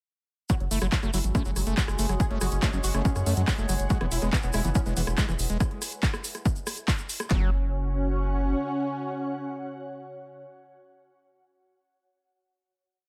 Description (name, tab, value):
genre	psychedelic trance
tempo	141 BPM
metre	4/4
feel	straight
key	unclear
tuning	A4 = 441 Hz
part	unison lead	melody	0.5-10.4 s	F#3 to G#4	-36 LUFS	equal	phaser, cassette tape, sidechain pumping, tape echo
part	overtone-sweeping drone	sustained chords	1.2-5.6 s	G#3 to G#4	-42 LUFS	equal	chorus, built-in reverb, phaser, sidechain pumping
part	overdriven acid bass	riff	0.5-7.5 s	E3 to A3	-36 LUFS	equal	distortion, sidechain pumping, dub echo
part	drum and bass drum kit	drums	0.5-7.3 s	handclaps, hi-hat, rim click	-35 LUFS	equal	overdrive
part	techno drum kit	drums	0.5-7.4 s	handclaps, kick drum, snare drum	-28 LUFS	equal	none
part	tube shaker	percussion	0.5-7.3 s	none	-41 LUFS	equal	none
part	ethereal airy pad	texture	1.3-10.6 s	E4 to F#5	-42 LUFS	equal	ensemble chorus, built-in reverb, sidechain pumping
part	round analog bass	bass	0.6-8.5 s	E1 to F#2	-30 LUFS	equal	tube saturation
room	digital ambience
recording	none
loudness	-27 LUFS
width	mono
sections	0.5-7.3 drop; 7.3-10.7 final chord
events	drop 0.5-7.3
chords	0.5 F#5; 3.9 E5; 7.3 F#5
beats	| 0.50 0.92 1.35 1.77 | 2.20 2.62 3.05 3.48 | 3.90 4.33 4.75 5.18 | 5.60 6.03 6.46 6.88 | 7.31 7.73 8.16 8.58 | 9.01 9.43 9.86 10.29